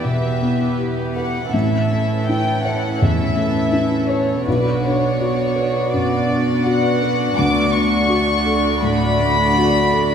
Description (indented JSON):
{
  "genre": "cinematic",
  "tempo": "82 BPM",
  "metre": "4/4",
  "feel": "rubato",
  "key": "D major",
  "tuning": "A4 = 437 Hz",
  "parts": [
    { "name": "warm symphonic violin section", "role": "melody", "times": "0.0-10.1 s", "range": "B4 to D6", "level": "-21 LUFS", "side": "left 2 dB", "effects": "none" },
    { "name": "warm symphonic violin section", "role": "second line", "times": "0.0-10.1 s", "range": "E4 to D5", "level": "-24 LUFS", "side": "left 1 dB", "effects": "none" },
    { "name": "felt-muted upright piano", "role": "accompaniment", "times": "0.0-10.1 s", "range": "A1 to C#5", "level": "-21 LUFS", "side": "left 1 dB", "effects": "none" },
    { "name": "rich chamber viola section", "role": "accompaniment", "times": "0.0-10.1 s", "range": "E3 to D4", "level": "-23 LUFS", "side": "equal", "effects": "none" },
    { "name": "warm symphonic cello section", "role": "bass", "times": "0.0-10.1 s", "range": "D2 to B2", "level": "-24 LUFS", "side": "right 3 dB", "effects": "none" }
  ],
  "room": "wet scoring stage reverb, RT60 1.5 s",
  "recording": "heard from further back in the room",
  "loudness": "-16 LUFS",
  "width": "side -7 dB against mid",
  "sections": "0.0-10.1 A section",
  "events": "none",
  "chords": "0.0 Em; 1.5 A; 4.5 Bm; 7.4 Dmaj7"
}